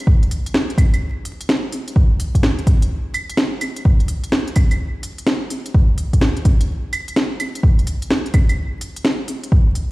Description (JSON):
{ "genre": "future garage", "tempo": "127 BPM", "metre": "4/4", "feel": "swing 65% on 16ths", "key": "none", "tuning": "none", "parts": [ { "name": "electronic kick drum", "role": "drums", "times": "0.1-9.6 s", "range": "none", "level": "-14 LUFS", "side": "equal", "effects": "overdrive" }, { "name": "organic electronic drum kit", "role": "drums", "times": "0.2-9.9 s", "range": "claves, hi-hat, snare drum", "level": "-22 LUFS", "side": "equal", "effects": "overdrive" } ], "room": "light reverb, digital ambience", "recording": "played on a big sound system in a bare room, large studio reverb, vinyl crackle", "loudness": "-16 LUFS", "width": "side -20 dB against mid", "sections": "0.0-9.9 A section", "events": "none", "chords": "none", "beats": "| 0.07 0.55 1.02 1.49 | 1.96 2.44 2.91 3.38 | 3.85 4.33 4.80 5.27 | 5.74 6.22 6.69 7.16 | 7.63 8.11 8.58 9.05 | 9.52" }